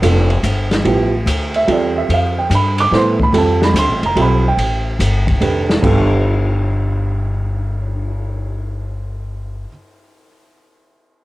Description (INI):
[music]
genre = modal jazz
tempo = 145 BPM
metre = 3/4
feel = swing 66% on 8ths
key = G mixolydian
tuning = A4 = 441 Hz
[part]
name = dark baby grand piano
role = accompaniment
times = 0.0-9.7 s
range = G2 to D6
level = -17 LUFS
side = right 3 dB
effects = cassette tape
[part]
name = upright bass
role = bass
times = 0.0-9.6 s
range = F1 to A2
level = -17 LUFS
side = left 1 dB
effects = none
[part]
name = open jazz drum kit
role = drums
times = 0.0-8.2 s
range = crash cymbal, cymbal swell, hi-hat, kick drum, ride cymbal, snare drum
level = -21 LUFS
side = equal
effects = cassette tape
[sound]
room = moderate booth ambience, RT60 0.2 s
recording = home recording on cassette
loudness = -13 LUFS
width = side -17 dB against mid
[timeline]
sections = 0.0-5.8 A section; 5.8-8.3 B section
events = none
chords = 0.0 G9